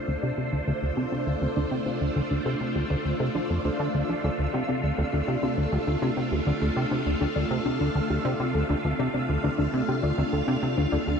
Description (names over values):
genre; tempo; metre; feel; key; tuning
ambient, sequencer-driven space music; 101 BPM; 4/4; straight; D minor; A4 = 440 Hz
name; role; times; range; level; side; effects
phased string machine; sustained chords; 0.0-11.2 s; A3 to F5; -29 LUFS; equal; ensemble chorus, phaser
pulsing gated texture; texture; 0.0-11.2 s; E6; -42 LUFS; right 1 dB; chorus, built-in reverb
soft round pluck; arpeggios; 0.1-11.0 s; D4 to D5; -34 LUFS; moving between left 7 dB and right 1 dB; chorus, auto-pan, vintage 12-bit sampler grit, tape echo
plucky analog bass; riff; 0.1-11.2 s; D2 to F3; -26 LUFS; equal; analog chorus, tape echo
room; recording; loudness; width
wet huge ambient reverb, RT60 8.1 s; dark, warm production; -24 LUFS; side -6 dB against mid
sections
0.0-11.2 A section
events
fade-in on synth texture 0.0-11.2; filter sweep on synth arpeggio sound 0.0-11.2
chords
0.0 Dm7